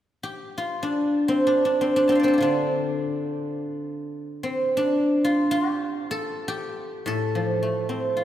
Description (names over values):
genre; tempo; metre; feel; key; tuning
chinese traditional, Chinese solo plucked strings; free time; none; none; D yu mode; A4 = 440 Hz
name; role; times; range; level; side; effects
guzheng; solo; 0.2-8.2 s; A2 to A5; -22 LUFS; equal; none
room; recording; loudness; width
wet church reverb, RT60 3.4 s; recorded in a church or concert hall; -21 LUFS; side -11 dB against mid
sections
0.0-8.2 A section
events
none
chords
none